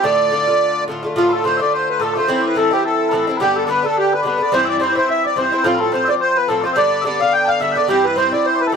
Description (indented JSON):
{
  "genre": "celtic folk",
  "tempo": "214 BPM",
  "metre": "4/4",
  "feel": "swing 56% on 8ths",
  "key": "D dorian",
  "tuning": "A4 = 441 Hz",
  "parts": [
    { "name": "accordion", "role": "melody", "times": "0.0-8.8 s", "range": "F4 to G5", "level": "-16 LUFS", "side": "right 2 dB", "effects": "light tremolo tuning" },
    { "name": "Irish bouzouki", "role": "accompaniment", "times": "0.0-8.8 s", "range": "G2 to F4", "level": "-21 LUFS", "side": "left 1 dB", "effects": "none" },
    { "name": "mellow small bagpipes", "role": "second line", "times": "1.2-8.8 s", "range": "F4 to A5", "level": "-21 LUFS", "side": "left 8 dB", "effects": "none" }
  ],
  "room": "moderate small room reverb, RT60 0.6 s",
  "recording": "none",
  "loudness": "-14 LUFS",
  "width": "side -6 dB against mid",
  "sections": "0.0-1.2 A section; 1.2-8.8 A section",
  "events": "none",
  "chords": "0.0 Dm; 2.3 Am; 3.4 G; 4.5 C; 5.6 F; 6.8 G; 7.9 C"
}